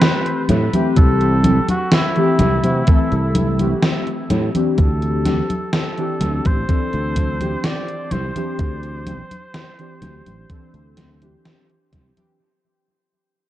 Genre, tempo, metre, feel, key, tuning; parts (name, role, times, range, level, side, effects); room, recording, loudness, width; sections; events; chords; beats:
vaporwave; 63 BPM; 4/4; straight; A4 = 440 Hz
clear flugelhorn; melody; 0.0-11.4 s; E4 to D5; -25 LUFS; equal; tape echo
warbly lo-fi synth keys; accompaniment; 0.0-12.4 s; E3 to A4; -22 LUFS; left 2 dB; lush chorus, analog delay
gated 80s digital drum machine; drums; 0.0-12.4 s; congas, hi-hat, snare drum; -21 LUFS; equal; gated reverb, gated reverb snare, analog delay
sustaining fretless electric bass; bass; 0.5-12.1 s; A1 to C3; -20 LUFS; right 1 dB; tube saturation, lush chorus
electronic kick drum; drums; 1.0-12.1 s; -15 LUFS; equal
light reverb, digital ambience; echo-heavy mix, cassette tape; -16 LUFS; side -13 dB against mid
0.0-12.4 A section
fade-out 2.2-12.4
0.0 C6; 4.8 D9sus4
0.02 | 0.97 1.93 2.88 3.83 | 4.78 5.74 6.69 7.64 | 8.59 9.55 10.50 11.45